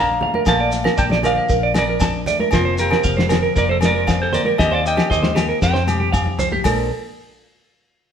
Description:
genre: highlife guitar band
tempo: 116 BPM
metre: 4/4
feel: straight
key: Bb major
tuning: A4 = 445 Hz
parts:
  - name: semi-hollow electric guitar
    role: melody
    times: 0.0-6.4 s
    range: F4 to Bb5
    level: -21 LUFS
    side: equal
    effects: none
  - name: semi-hollow electric guitar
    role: accompaniment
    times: 0.0-6.9 s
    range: F2 to A4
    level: -26 LUFS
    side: left 6 dB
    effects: none
  - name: clean electric guitar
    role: arpeggios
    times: 0.0-6.9 s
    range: G4 to A5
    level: -21 LUFS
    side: right 4 dB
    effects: none
  - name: vintage muted fingered electric bass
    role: bass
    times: 0.0-6.9 s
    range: F1 to F2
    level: -24 LUFS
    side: left 1 dB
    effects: none
  - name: congas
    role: percussion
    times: 0.2-6.9 s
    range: none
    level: -28 LUFS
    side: equal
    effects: none
  - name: cloth-damped thuddy drum kit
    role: drums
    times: 0.5-6.8 s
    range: hi-hat, kick drum, snare drum, toms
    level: -21 LUFS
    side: left 1 dB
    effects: none
  - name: agogo bells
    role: percussion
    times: 0.5-6.8 s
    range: none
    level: -28 LUFS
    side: left 2 dB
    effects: none
  - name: shekere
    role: percussion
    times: 0.5-6.9 s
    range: none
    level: -31 LUFS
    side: equal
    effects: none
room: moderate stone room reverb, RT60 1.1 s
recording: band playing live in one room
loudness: -15 LUFS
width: side -8 dB against mid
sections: 0.0-6.7 A section; 6.7-8.1 B section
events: drum fill 5.6-6.7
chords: 0.0 Bbmaj7; 2.5 Fsus4; 4.6 Eb6; 5.6 Fsus2; 6.7 Bbmaj7

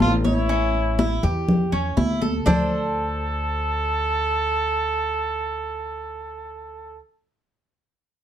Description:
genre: latin, Cuban son and guajira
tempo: 122 BPM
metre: 4/4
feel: straight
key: unclear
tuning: A4 = 441 Hz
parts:
  - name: warm trumpet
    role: melody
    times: 0.0-7.0 s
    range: E4 to A4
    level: -25 LUFS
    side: right 1 dB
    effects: none
  - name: Cuban tres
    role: arpeggios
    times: 0.0-7.0 s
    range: C#4 to C#5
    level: -27 LUFS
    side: right 2 dB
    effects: none
  - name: upright bass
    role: bass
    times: 0.0-7.0 s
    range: A1 to E2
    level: -26 LUFS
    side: equal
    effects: none
  - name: congas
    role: percussion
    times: 0.0-2.6 s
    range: none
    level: -22 LUFS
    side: left 1 dB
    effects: none
room: moderate studio reverb, RT60 0.5 s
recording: dark, warm production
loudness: -20 LUFS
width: side -10 dB against mid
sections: 0.0-2.5 A section; 2.5-6.4 B section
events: none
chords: 0.5 A7; 2.5 D5

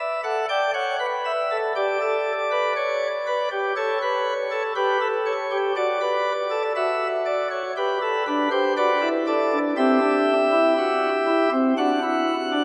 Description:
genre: classical, baroque-style 4-part fugue for pipe organ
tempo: 60 BPM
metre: 4/4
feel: straight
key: G major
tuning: A4 = 440 Hz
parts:
  - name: pipe organ, sparkling flutes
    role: solo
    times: 0.0-12.6 s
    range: C4 to G5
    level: -22 LUFS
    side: equal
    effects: none
room: wet cathedral reverb, RT60 4.7 s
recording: none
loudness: -22 LUFS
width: mono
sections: 0.0-12.6 A section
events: none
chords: 0.0 D; 1.8 Gadd9; 3.8 A7; 5.8 D/F#; 7.8 G; 9.8 Cadd9

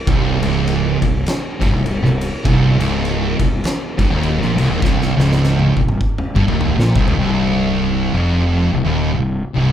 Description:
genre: stoner and doom metal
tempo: 101 BPM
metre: 4/4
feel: swing 59% on 8ths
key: unclear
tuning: A4 = 435 Hz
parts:
  - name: sludgy distorted guitar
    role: riff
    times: 0.1-9.7 s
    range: C2 to Bb2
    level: -22 LUFS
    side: right 1 dB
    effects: overdrive
  - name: thick fuzz guitar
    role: riff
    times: 0.1-9.7 s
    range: C2 to Bb2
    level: -20 LUFS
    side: left 5 dB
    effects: distortion
  - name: thick fuzz guitar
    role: riff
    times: 0.1-9.7 s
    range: C2 to Bb2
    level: -20 LUFS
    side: right 6 dB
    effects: distortion
  - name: fuzz fingered electric bass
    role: bass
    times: 0.1-9.7 s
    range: C1 to Bb1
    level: -22 LUFS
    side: equal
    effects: overdrive, tube saturation
  - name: oversized low-tuned drum kit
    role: drums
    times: 0.1-7.2 s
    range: kick drum, ride cymbal, snare drum, toms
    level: -20 LUFS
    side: equal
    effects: none
room: light reverb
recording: band playing live in one room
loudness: -14 LUFS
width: side -10 dB against mid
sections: 0.0-7.2 A section; 7.2-9.7 B section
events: drum fill 4.8-7.2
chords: 0.0 Cm

